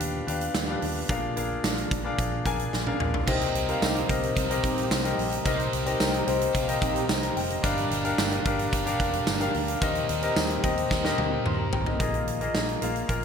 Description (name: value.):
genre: 1980s-style pop.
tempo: 110 BPM.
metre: 4/4.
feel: straight.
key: unclear.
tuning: A4 = 440 Hz.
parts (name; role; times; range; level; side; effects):
clear concert grand piano; accompaniment; 0.0-13.2 s; G2 to C6; -28 LUFS; left 4 dB; lush chorus.
glass harmonica; sustained chords; 0.0-13.2 s; Bb3 to Bb5; -36 LUFS; right 2 dB; none.
vintage muted fingered electric bass; bass; 0.0-13.2 s; F1 to Eb2; -33 LUFS; right 1 dB; none.
big rock drum kit; drums; 0.0-13.2 s; crash cymbal, hi-hat, kick drum, snare drum, tambourine, toms; -28 LUFS; right 1 dB; gated reverb.
biting overdriven guitar; accompaniment; 3.3-12.5 s; C3 to G4; -35 LUFS; right 2 dB; lush chorus.
mellow synth brass; stabs; 3.3-7.0 s; C4 to C5; -34 LUFS; right 3 dB; chorus, digital delay.
room: moderate plate reverb, RT60 1.6 s, small room ambience.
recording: bright 1980s-style digital production.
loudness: -24 LUFS.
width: side -7 dB against mid.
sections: 0.0-3.3 A section; 3.3-12.0 B section; 12.0-13.2 C section.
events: drum fill 2.7-3.3, 10.9-12.0; grand piano fill 6.0-7.6.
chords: 0.0 G7/Eb; 1.1 Bb7; 3.3 Cm7; 7.6 Gm7; 9.8 Eb6; 12.0 Bb7sus4.